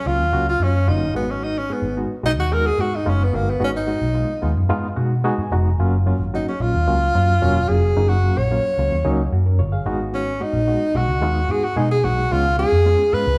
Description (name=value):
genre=uptempo 1960s-style soul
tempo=110 BPM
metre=4/4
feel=straight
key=unclear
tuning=A4 = 440 Hz
part: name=breathy tenor saxophone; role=melody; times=0.0-13.4 s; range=A#3 to C#5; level=-23 LUFS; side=equal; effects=none
part: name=barky reed electric piano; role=accompaniment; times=0.1-13.3 s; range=F#3 to A#5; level=-28 LUFS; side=equal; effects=overdrive, fast tremolo
part: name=vintage muted picked electric bass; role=bass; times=0.1-13.4 s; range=E1 to B2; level=-22 LUFS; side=equal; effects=none
room=wet large studio reverb, RT60 1.5 s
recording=band playing live in one room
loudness=-20 LUFS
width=mono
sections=0.0-13.4 A section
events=tenor saxophone solo 0.0-13.4; reed electric piano fill 4.7-5.8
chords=0.0 F#maj7; 1.2 G#m7; 5.8 F#maj7; 9.9 G#m7; 12.3 C#7